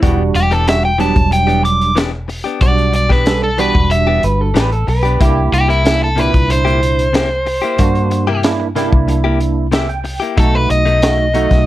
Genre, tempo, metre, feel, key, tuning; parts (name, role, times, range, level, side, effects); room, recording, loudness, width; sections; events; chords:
straight-eighth soul blues; 93 BPM; 4/4; straight; E minor; A4 = 440 Hz
electric guitar through a small old amp; second line; 0.0-0.2, 4.2-5.5 s; E4 to B4; -20 LUFS; right 3 dB; vibrato effect
barky tine electric piano; accompaniment; 0.0-11.7 s; Bb2 to G5; -19 LUFS; right 6 dB; ensemble chorus
direct-recorded clean electric guitar; stabs; 0.0-11.5 s; B2 to G4; -21 LUFS; left 6 dB
vintage muted fingered electric bass; bass; 0.0-11.7 s; E1 to G2; -16 LUFS; equal
crunchy breakbeat drum kit; drums; 0.0-11.7 s; hi-hat, kick drum, snare drum; -16 LUFS; equal
overdriven electric guitar; melody; 0.4-11.7 s; E4 to D6; -16 LUFS; equal
light reverb; -12 LUFS; side -14 dB against mid
0.0-11.7 A section
tine electric piano fill 9.4-10.4
0.0 Em7; 5.2 C7; 10.4 B7